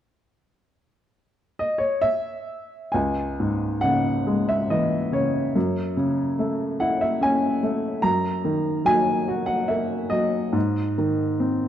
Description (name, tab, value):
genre	classical, lyrical solo piano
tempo	70 BPM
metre	3/4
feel	uneven beats, rubato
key	C# minor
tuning	A4 = 438 Hz
part	warm upright piano	solo	1.6-11.7 s	C#2 to A#5	-21 LUFS	equal	none
room	moderate scoring stage reverb, RT60 2.0 s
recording	dark, warm production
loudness	-21 LUFS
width	side -10 dB against mid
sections	0.3-2.9 A section; 2.9-11.7 B section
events	none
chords	0.3 N.C.; 2.9 C#m; 5.6 F#m7; 8.0 D#m/F#; 10.5 G#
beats	| 0.33 1.19 2.04 | 2.94 3.83 4.70 | 5.55 6.39 7.22 | 8.04 8.86 9.70 | 10.55 11.41